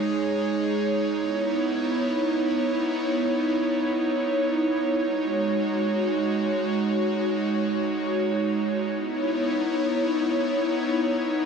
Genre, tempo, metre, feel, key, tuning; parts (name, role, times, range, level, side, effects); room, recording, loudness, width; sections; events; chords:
hip hop; free time; C# minor; A4 = 440 Hz
airy breathy pad; solo; 0.0-11.5 s; G#3 to C#5; -22 LUFS; right 1 dB; chorus, ping-pong delay
light reverb, digital ambience; dark, warm production; -22 LUFS; side -6 dB against mid
0.0-11.5 A section
0.0 G#sus4; 1.2 C#m9; 5.1 G#7sus4; 8.9 C#m9